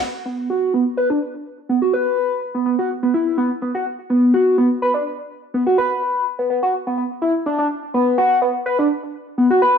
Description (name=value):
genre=breakbeat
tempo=125 BPM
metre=4/4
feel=straight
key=B minor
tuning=A4 = 441 Hz
part: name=overdriven synth lead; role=riff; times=0.3-9.8 s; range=B3 to B4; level=-17 LUFS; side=equal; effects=lush chorus, cassette tape, tape echo
room=moderate digital room reverb, RT60 1.1 s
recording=none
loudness=-17 LUFS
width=side -7 dB against mid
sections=0.0-9.8 A section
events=filter sweep on analog synth lead 0.0-9.8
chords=none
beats=| 0.02 0.50 0.98 1.46 | 1.94 2.42 2.90 3.38 | 3.86 4.34 4.82 5.30 | 5.78 6.26 6.74 7.22 | 7.70 8.18 8.66 9.14 | 9.62